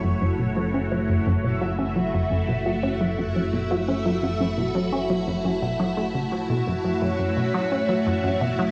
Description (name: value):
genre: ambient, sequencer-driven space music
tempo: 86 BPM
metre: 4/4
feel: straight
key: F# minor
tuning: A4 = 440 Hz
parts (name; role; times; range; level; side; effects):
- string machine, full ensemble; sustained chords; 0.0-8.7 s; A3 to E5; -28 LUFS; equal; phaser, ensemble chorus, shimmer reverb
- resonant blip pluck; riff; 0.0-8.7 s; F#2 to C#4; -27 LUFS; equal; chorus, phaser, delay
- analog drone; bass; 0.0-8.7 s; F#1; -35 LUFS; equal; chorus
- soft octave-layered synth lead; melody; 7.0-8.7 s; C#5 to E5; -30 LUFS; equal; chorus, phaser, shimmer reverb, delay
room: wet studio reverb, RT60 0.7 s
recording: home recording on cassette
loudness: -24 LUFS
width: mono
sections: 0.0-8.7 A section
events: none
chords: 0.0 F#m7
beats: 0.04 0.74 | 1.44 2.14 2.83 3.53 | 4.23 4.93 5.63 6.32 | 7.02 7.72 8.42